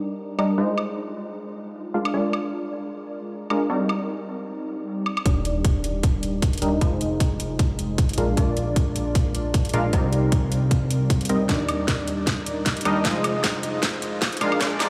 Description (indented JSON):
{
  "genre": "future bass",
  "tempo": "154 BPM",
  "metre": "4/4",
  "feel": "swing 56% on 16ths, half-time",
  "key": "Eb major",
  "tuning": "A4 = 440 Hz",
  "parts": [
    { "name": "supersaw stab", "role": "riff", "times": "0.0-14.9 s", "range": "G3 to F5", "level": "-27 LUFS", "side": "equal", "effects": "sidechain pumping, low-pass filter, delay" },
    { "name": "dubstep drum kit", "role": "drums", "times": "0.4-14.9 s", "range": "hi-hat, snare drum, woodblock", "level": "-31 LUFS", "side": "equal", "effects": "high-pass filter on perc, high-pass filter on hats, high-pass filter on snare" },
    { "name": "fat analog bass", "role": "bass", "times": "5.3-14.9 s", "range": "Eb1 to Eb2", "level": "-30 LUFS", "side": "equal", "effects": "sidechain pumping" },
    { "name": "electronic kick drum", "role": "drums", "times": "5.3-14.7 s", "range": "none", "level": "-24 LUFS", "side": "equal", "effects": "none" }
  ],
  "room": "light reverb",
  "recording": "played on a big sound system in a bare room, stone room reverb, high-pass filter",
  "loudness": "-23 LUFS",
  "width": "mono",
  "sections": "0.0-5.3 A section; 5.3-14.9 B section",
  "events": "build-up 5.3-14.9; filter sweep on supersaw synth 5.3-14.9; filter sweep 5.3-14.9; drum fill 11.5-14.9",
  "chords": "0.0 Ebmaj7; 0.6 Fm7; 1.9 Bb7; 3.7 Cm9; 5.3 Ebmaj7; 6.8 Fm7; 8.2 Bb7; 9.9 Cm9; 11.5 Ebmaj7; 13.0 Fm7"
}